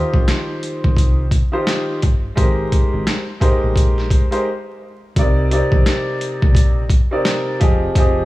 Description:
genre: hip hop, boom-bap hip-hop.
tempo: 86 BPM.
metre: 4/4.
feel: swing 60% on 16ths.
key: C minor.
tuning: A4 = 440 Hz.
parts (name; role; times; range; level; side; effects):
clear upright piano; accompaniment; 0.0-8.2 s; C3 to Eb5; -20 LUFS; equal; high-pass filter, low-pass filter.
deep dub fingered electric bass; bass; 0.0-8.2 s; F1 to C2; -19 LUFS; equal; none.
boom bap sampler-style drum kit; drums; 0.1-8.2 s; hi-hat, kick drum, snare drum; -16 LUFS; equal; none.
room: little or no reverb.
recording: vinyl crackle, small room ambience.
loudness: -14 LUFS.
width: side -17 dB against mid.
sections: 0.0-5.2 A section; 5.2-8.2 B section.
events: break 4.5-5.2.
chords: 0.0 Eb6; 2.4 Abmaj7; 5.2 Cm7; 7.6 Fm7.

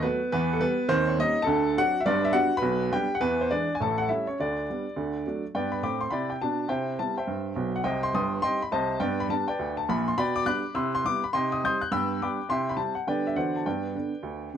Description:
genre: jazz, stride piano.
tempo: 207 BPM.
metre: 4/4.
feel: swing 63% on 8ths.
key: G major.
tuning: A4 = 441 Hz.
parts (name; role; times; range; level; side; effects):
clear upright piano; solo; 0.0-14.6 s; G1 to G6; -24 LUFS; equal; none.
room: moderate club reverb, RT60 0.7 s.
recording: dark, warm production.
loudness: -24 LUFS.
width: side -8 dB against mid.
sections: 0.0-5.5 A section; 5.5-14.6 B section.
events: none.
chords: 0.3 Em; 0.9 Eb7; 1.5 D7; 2.1 G; 2.6 G/B; 3.2 E7; 3.8 A7; 4.4 G/D; 4.9 D; 5.5 G; 6.7 Cmaj7; 7.8 Cm; 9.0 G; 10.2 G/B; 10.8 Cmaj7; 11.3 Cm; 11.9 G; 12.5 C; 13.1 G/D; 13.4 D13; 13.7 G.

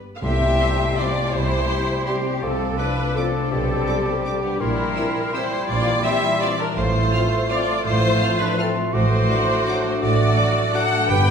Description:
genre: classical, orchestral ballroom waltz.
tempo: 166 BPM.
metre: 3/4.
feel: uneven beats, rubato.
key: C major.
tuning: A4 = 441 Hz.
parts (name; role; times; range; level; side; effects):
concert harp; arpeggios; 0.0-11.3 s; G2 to G4; -28 LUFS; left 5 dB; none.
clear clarinet; second line; 0.2-11.3 s; E4 to A4; -30 LUFS; left 1 dB; none.
small flute group; second line; 0.2-11.3 s; G4 to G5; -28 LUFS; left 3 dB; none.
warm oboe; second line; 0.2-11.3 s; C6 to D6; -30 LUFS; right 2 dB; none.
warm studio violin section; second line; 0.2-11.3 s; B3 to B4; -29 LUFS; left 2 dB; none.
mellow bassoon; accompaniment; 0.2-11.3 s; F3 to B3; -28 LUFS; right 2 dB; none.
rich studio viola section; accompaniment; 0.2-11.3 s; G4 to G5; -25 LUFS; equal; none.
rich studio double bass section; bass; 0.2-11.3 s; G1 to C2; -26 LUFS; right 2 dB; none.
warm studio cello section; bass; 0.2-11.3 s; G2 to C3; -28 LUFS; right 2 dB; none.
tam-tam; percussion; 0.2-1.7 s; none; -34 LUFS; left 1 dB; none.
timpani; percussion; 0.2-0.7, 11.1-11.3 s; G2 to C3; -29 LUFS; equal; none.
clear studio violin section; melody; 0.6-10.8 s; C6 to F6; -37 LUFS; left 1 dB; none.
mellow French horn section; sustained chords; 0.6-10.9 s; E3 to D4; -33 LUFS; left 3 dB; none.
room: wet recital hall reverb, RT60 1.4 s.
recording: recorded in a church or concert hall.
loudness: -18 LUFS.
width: side -7 dB against mid.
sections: 0.2-11.3 A section.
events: band accent 0.2-0.6.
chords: 0.2 C; 2.4 Dm7/C; 3.5 G/B; 4.6 C7/Bb; 6.8 F/A; 8.9 D7/A.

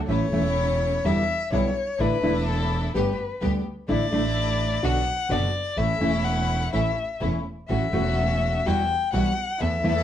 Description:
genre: tango.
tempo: 126 BPM.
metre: 4/4.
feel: rubato.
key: unclear.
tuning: A4 = 442 Hz.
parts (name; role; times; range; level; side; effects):
dark violin; second line; 0.1-10.0 s; A4 to G5; -27 LUFS; left 4 dB; none.
nylon-string guitar; accompaniment; 0.1-9.9 s; B2 to G4; -26 LUFS; equal; none.
clear symphonic string section; stabs; 0.1-10.0 s; G3 to A4; -31 LUFS; left 1 dB; none.
clear double bass; bass; 0.1-10.0 s; E1 to E2; -27 LUFS; right 2 dB; none.
room: moderate studio reverb, RT60 0.8 s.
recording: dark, warm production.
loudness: -22 LUFS.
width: side -10 dB against mid.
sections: 0.1-10.0 A section.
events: violin solo 0.1-10.0.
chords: 0.1 A; 1.0 Em7; 2.0 Asus4; 2.9 Gadd9; 3.9 Dsus2/A; 4.8 Bm; 5.8 A; 7.7 A6; 8.6 Emadd9.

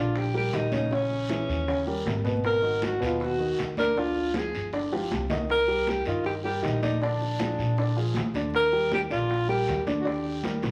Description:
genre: Afro-Cuban jazz.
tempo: 157 BPM.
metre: 4/4.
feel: straight.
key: Eb major.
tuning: A4 = 440 Hz.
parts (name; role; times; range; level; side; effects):
breathy alto saxophone; melody; 0.0-10.6 s; Db4 to Bb4; -30 LUFS; equal; none.
warm upright piano; accompaniment; 0.0-10.7 s; Cb3 to Eb5; -32 LUFS; equal; none.
upright bass; bass; 0.0-10.7 s; G1 to Bb2; -34 LUFS; equal; none.
bongos; percussion; 0.2-10.7 s; none; -40 LUFS; equal; none.
congas; percussion; 0.2-10.7 s; none; -38 LUFS; equal; none.
guiro; percussion; 0.2-10.7 s; none; -44 LUFS; equal; none.
room: moderate large studio reverb, RT60 0.9 s.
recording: vinyl crackle.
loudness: -27 LUFS.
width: mono.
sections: 0.0-10.7 A section.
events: drum fill 4.9-5.5, 10.4.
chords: 0.0 Bb6; 0.9 Bbm7b5; 1.7 Eb7; 2.4 Abm9; 4.0 Ddim; 4.7 G5; 5.5 Cm9; 7.0 Bb7; 8.5 Ebmaj7.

